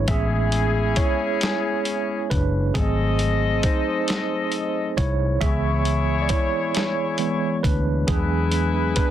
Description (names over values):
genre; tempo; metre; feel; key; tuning
slow six-eight R&B; 45 BPM (dotted quarters); 6/8; straight; unclear; A4 = 440 Hz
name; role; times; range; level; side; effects
tine electric piano; accompaniment; 0.0-9.1 s; E3 to E5; -24 LUFS; right 3 dB; medium stereo tremolo
vintage muted fingered electric bass; bass; 0.0-9.0 s; F#1 to E2; -22 LUFS; equal; none
clear horn section; stabs; 0.1-9.1 s; C#4 to D#5; -26 LUFS; left 8 dB; none
dusty soul sampler-style drum kit; drums; 0.1-9.1 s; hi-hat, kick drum, snare drum; -24 LUFS; equal; none
room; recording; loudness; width
light reverb; dense, heavily limited modern master; -20 LUFS; side -11 dB against mid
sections
0.0-9.1 A section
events
tine electric piano solo 0.0-9.1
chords
0.1 Amaj7; 2.7 G#7b9; 5.4 C#m7; 8.1 E7